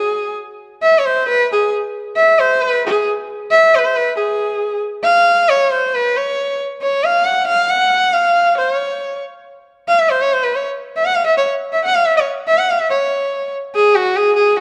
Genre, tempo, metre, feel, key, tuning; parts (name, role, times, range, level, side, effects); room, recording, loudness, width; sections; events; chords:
indian classical; 137 BPM; 5/4; straight; F raga todi; A4 = 438 Hz
clear sarangi; solo; 0.0-14.6 s; Gb4 to Gb5; -16 LUFS; equal
moderate scoring stage reverb, RT60 1.8 s; -15 LUFS; mono
0.0-4.2 A section; 4.2-12.9 B section; 12.9-14.6 A section
speeding up 0.0-14.6